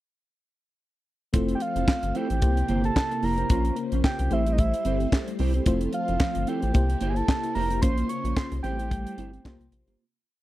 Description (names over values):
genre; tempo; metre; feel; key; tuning
early-eighties boogie funk; 111 BPM; 4/4; swing 56% on 16ths; F major; A4 = 440 Hz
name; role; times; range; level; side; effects
FM electric piano with tremolo; accompaniment; 1.3-10.0 s; A3 to C5; -32 LUFS; left 3 dB; none
phased string machine; sustained chords; 1.3-10.0 s; C3 to C5; -35 LUFS; equal; ensemble chorus, phaser
mellow electric guitar; riff; 1.3-10.0 s; Bb3 to C5; -31 LUFS; right 5 dB; ensemble chorus
rubbery square bass; bass; 1.3-10.0 s; F1 to C2; -27 LUFS; equal; none
tight funk drum kit; drums; 1.3-10.0 s; handclaps, hi-hat, kick drum, snare drum; -24 LUFS; equal; none
soft octave-layered synth lead; melody; 1.6-9.7 s; Eb5 to Db6; -30 LUFS; right 1 dB; chorus, slapback echo
room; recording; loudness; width
little or no reverb; dry, close 1970s-style studio recording; -23 LUFS; side -15 dB against mid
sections
1.3-10.0 verse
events
fade-out 7.8-10.0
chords
1.3 Fmaj7; 2.4 C7; 3.5 Bbmadd9; 4.3 Am7; 5.7 Fmaj7; 6.7 C7; 7.8 Bbmadd9; 8.6 Am7; 9.4 C7sus4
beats
| 1.34 1.88 2.42 2.96 | 3.50 4.04 4.58 5.12 | 5.67 6.21 6.75 7.29 | 7.83 8.37 8.91 9.45